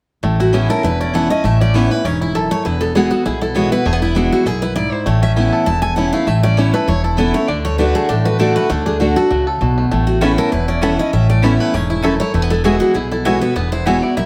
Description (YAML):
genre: bluegrass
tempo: 198 BPM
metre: 4/4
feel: swing 53% on 8ths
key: A major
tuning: A4 = 441 Hz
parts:
  - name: bluegrass banjo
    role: melody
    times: 0.2-14.3 s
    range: E3 to A4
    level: -26 LUFS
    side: equal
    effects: slapback echo
  - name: picked steel-string acoustic guitar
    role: accompaniment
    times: 0.2-14.3 s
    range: E2 to F#4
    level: -20 LUFS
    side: equal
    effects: none
  - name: upright bass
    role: bass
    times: 0.2-14.3 s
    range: E1 to D2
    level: -21 LUFS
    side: equal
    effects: none
  - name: picked steel-string acoustic guitar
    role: melody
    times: 0.4-14.3 s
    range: D4 to A5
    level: -22 LUFS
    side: equal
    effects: none
  - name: mandolin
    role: stabs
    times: 10.2-14.0 s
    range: B3 to B5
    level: -24 LUFS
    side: equal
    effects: none
room: light reverb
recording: none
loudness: -16 LUFS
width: mono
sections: 0.2-14.3 A section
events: none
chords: 0.2 Aadd9; 2.7 Eadd9; 5.1 Aadd9; 7.5 D; 9.9 Aadd9; 12.3 Eadd9